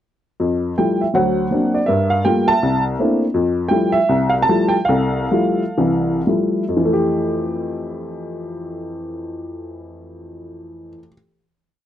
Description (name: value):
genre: solo jazz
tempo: 111-168 BPM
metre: 4/4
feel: swing 65% on 8ths, rubato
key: F major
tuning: A4 = 444 Hz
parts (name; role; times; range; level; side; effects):
- warm upright piano; solo; 0.4-11.1 s; C2 to A5; -17 LUFS; equal; none
room: little or no reverb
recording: dry, close 1970s-style studio recording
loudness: -15 LUFS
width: side -11 dB against mid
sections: 0.4-6.8 A section; 6.8-11.0 final chord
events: slowing down 3.3-6.8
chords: 0.4 Fmaj9; 1.1 D7b13; 1.9 Gm9; 2.6 C13; 3.3 Fmaj9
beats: | 0.39 0.77 1.15 1.52 | 1.89 2.26 2.62 2.98 | 3.35 3.71 4.09 4.47 | 4.88 5.30 5.76 6.26 | 6.79 7.33 7.86 8.38 | 8.90 9.42 9.95 10.49